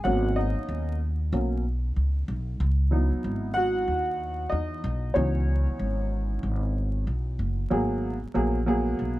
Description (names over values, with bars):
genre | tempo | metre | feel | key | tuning
hip hop, jazz-hop | 94 BPM | 4/4 | swing 61% on 16ths | unclear | A4 = 435 Hz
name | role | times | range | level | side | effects
warm upright piano | accompaniment | 0.0-9.2 s | E3 to F#5 | -27 LUFS | right 1 dB | none
upright bass | bass | 0.0-9.2 s | F#1 to E2 | -26 LUFS | equal | none
room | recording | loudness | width
little or no reverb | dark, warm production, vinyl crackle | -24 LUFS | side -16 dB against mid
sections
0.0-7.7 A section; 7.7-9.2 B section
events
upright piano solo 0.0-7.7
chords
0.0 G#m11; 2.6 C#m11; 7.7 G#m9